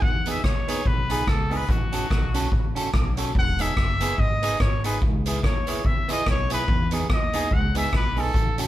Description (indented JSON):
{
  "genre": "ska",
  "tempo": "144 BPM",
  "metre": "4/4",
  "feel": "swing 58% on 8ths",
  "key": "unclear",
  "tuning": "A4 = 440 Hz",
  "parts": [
    { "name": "warm trumpet", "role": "melody", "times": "0.0-8.6 s", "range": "F#4 to F#5", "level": "-28 LUFS", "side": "left 1 dB", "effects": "none" },
    { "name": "upright bass", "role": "bass", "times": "0.0-8.7 s", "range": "E1 to E2", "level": "-28 LUFS", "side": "equal", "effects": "none" },
    { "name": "street-band drum kit", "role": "drums", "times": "0.0-8.7 s", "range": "hi-hat, kick drum, rim click", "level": "-23 LUFS", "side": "equal", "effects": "none" },
    { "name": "semi-hollow electric guitar", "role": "accompaniment", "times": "0.3-8.7 s", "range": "B3 to A4", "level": "-30 LUFS", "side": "right 2 dB", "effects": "phaser, dub echo" }
  ],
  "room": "light reverb",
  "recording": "band playing live in one room",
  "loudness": "-21 LUFS",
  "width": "side -14 dB against mid",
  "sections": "0.0-8.7 A section",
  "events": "trumpet solo 0.0-8.7",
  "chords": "0.0 C#m7; 1.7 A6; 3.3 Emaj7; 5.0 C#m7"
}